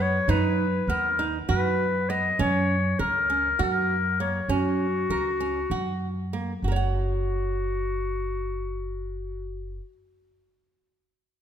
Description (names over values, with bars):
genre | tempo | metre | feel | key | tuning
contemporary instrumental, contemporary | 198 BPM (eighths) | 7/8 | straight | F# major | A4 = 443 Hz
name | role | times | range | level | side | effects
clear clarinet | melody | 0.0-9.8 s | F#4 to D#5 | -27 LUFS | left 3 dB | none
flamenco guitar | arpeggios | 0.0-9.9 s | A#3 to F#5 | -30 LUFS | right 6 dB | none
upright bass | bass | 0.0-9.8 s | F#1 to F#2 | -28 LUFS | equal | none
room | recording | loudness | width
moderate scoring stage reverb, RT60 2.0 s | none | -23 LUFS | side -9 dB against mid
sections
0.0-6.6 A section; 6.6-10.9 B section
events
slowing down 2.4-6.6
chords
0.0 B; 2.4 F#; 6.6 F#5